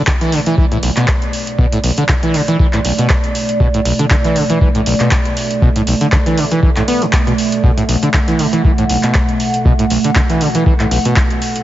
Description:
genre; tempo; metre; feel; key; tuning
acid house; 119 BPM; 4/4; swing 55% on 16ths; B minor; A4 = 437 Hz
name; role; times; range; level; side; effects
dark analog pad; sustained chords; 0.0-11.6 s; B2 to F#5; -19 LUFS; right 2 dB; chorus, phaser, sidechain pumping
overdriven acid bass; riff; 0.0-11.1 s; B1 to B3; -16 LUFS; equal; lush chorus, digital delay
electro analog drum machine; drums; 0.1-11.6 s; handclaps, hi-hat; -20 LUFS; equal; overdrive
electronic kick drum; drums; 0.1-11.3 s; none; -14 LUFS; equal; overdrive
room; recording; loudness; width
light reverb; heavily compressed radio sound, nothing above 7.6 kHz; -11 LUFS; side -13 dB against mid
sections
0.0-11.6 A section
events
none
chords
0.0 Bm7

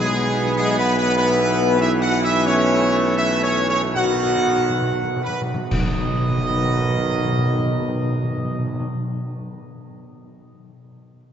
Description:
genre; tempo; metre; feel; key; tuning
classical, ceremonial fanfare; 62-104 BPM; 4/4; straight; B major; A4 = 439 Hz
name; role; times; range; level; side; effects
bright trumpet section; melody; 0.0-8.9 s; G#4 to F#5; -23 LUFS; right 1 dB; none
mellow French horn section; sustained chords; 0.0-8.9 s; G#3 to F#4; -25 LUFS; left 3 dB; none
warm trombone section; sustained chords; 0.0-8.8 s; D#3 to B3; -26 LUFS; right 1 dB; none
mellow tuba; bass; 0.0-8.8 s; B1; -24 LUFS; right 2 dB; none
timpani; percussion; 0.0-8.9 s; B2; -25 LUFS; equal; none
clash cymbals and concert bass drum; percussion; 5.7-7.6 s; none; -28 LUFS; equal; none
room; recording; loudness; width
wet cathedral reverb, RT60 5.1 s; nothing above 7.8 kHz; -17 LUFS; side -8 dB against mid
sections
0.0-5.7 A section; 5.7-9.5 B section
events
slowing down 0.0-5.7; timpani fill 4.0-5.7; band accent 5.7-6.7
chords
0.0 E/B; 2.5 A/B; 4.0 B

